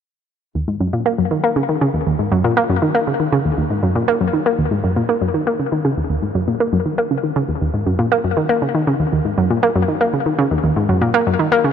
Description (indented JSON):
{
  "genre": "ambient",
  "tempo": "119 BPM",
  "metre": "4/4",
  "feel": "straight",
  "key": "Eb minor",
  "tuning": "A4 = 441 Hz",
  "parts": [
    { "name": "analog pluck", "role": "solo", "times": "0.6-11.7 s", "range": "Eb2 to Bb3", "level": "-15 LUFS", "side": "equal", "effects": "chorus, ping-pong delay" }
  ],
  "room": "moderate huge ambient reverb, RT60 9.0 s",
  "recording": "none",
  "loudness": "-15 LUFS",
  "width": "side -8 dB against mid",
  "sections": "0.6-4.6 A section; 4.6-11.7 B section",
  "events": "none",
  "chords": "none",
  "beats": "| 0.55 1.06 1.56 2.06 | 2.57 3.07 3.58 4.08 | 4.59 5.09 5.59 6.10 | 6.60 7.11 7.61 8.12 | 8.62 9.12 9.63 10.13 | 10.64 11.14 11.64"
}